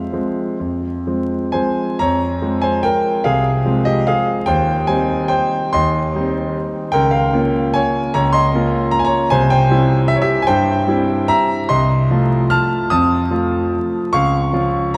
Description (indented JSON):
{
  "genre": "classical, piano waltz",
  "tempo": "118-159 BPM",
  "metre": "3/4",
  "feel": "rubato",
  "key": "F minor",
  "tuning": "A4 = 441 Hz",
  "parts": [
    { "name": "clear concert grand piano", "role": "solo", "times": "0.0-15.0 s", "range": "C2 to F6", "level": "-17 LUFS", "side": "equal", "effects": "none" }
  ],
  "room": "wet cathedral reverb, RT60 5.1 s",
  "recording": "in a vast, echoing space, vinyl crackle",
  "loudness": "-17 LUFS",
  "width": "mono",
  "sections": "0.0-2.0 A section; 2.0-15.0 B section",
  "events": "none",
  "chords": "0.0 Fm; 4.5 Cm/Eb; 6.9 Bbm/Db; 9.3 C; 11.7 F7/C; 14.1 Bbm/Db (rootless)"
}